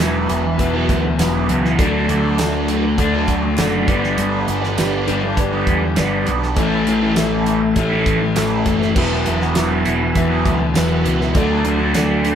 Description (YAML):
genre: classic rock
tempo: 100 BPM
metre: 4/4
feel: straight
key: unclear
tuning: A4 = 439 Hz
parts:
  - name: reed electric piano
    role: accompaniment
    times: 0.0-12.4 s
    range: F#4 to E5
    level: -26 LUFS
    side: left 1 dB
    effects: overdrive
  - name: tonewheel organ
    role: sustained chords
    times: 0.0-12.4 s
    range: D4 to E5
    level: -30 LUFS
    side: right 1 dB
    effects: slow rotary speaker, overdrive, chorus vibrato
  - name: crunchy overdriven guitar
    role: riff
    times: 0.0-12.4 s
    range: E2 to D4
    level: -20 LUFS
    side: left 5 dB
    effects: spring reverb
  - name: raw garage guitar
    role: riff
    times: 0.0-12.4 s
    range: G2 to E4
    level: -21 LUFS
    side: right 4 dB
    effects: overdrive, phaser
  - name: fuzz picked electric bass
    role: bass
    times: 0.0-12.4 s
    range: E1 to E2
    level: -22 LUFS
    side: right 1 dB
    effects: overdrive
  - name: damped 70s drum kit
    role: drums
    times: 0.0-12.4 s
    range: crash cymbal, hi-hat, kick drum, snare drum, tambourine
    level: -21 LUFS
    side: right 1 dB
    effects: none
  - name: group handclap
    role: percussion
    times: 0.0-12.1 s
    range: none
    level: -37 LUFS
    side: right 5 dB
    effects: none
room: moderate studio reverb, RT60 0.6 s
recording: band playing live in one room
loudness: -15 LUFS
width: side -9 dB against mid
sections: 0.0-12.4 A section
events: reed electric piano fill 3.3-4.2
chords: 0.0 Esus2; 1.8 D; 3.9 G; 6.6 A; 9.0 Esus2; 11.4 D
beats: 0.00 0.60 1.20 | 1.79 2.39 2.99 3.58 | 4.18 4.78 5.38 5.97 | 6.57 7.17 7.76 8.36 | 8.96 9.56 10.16 10.76 | 11.35 11.95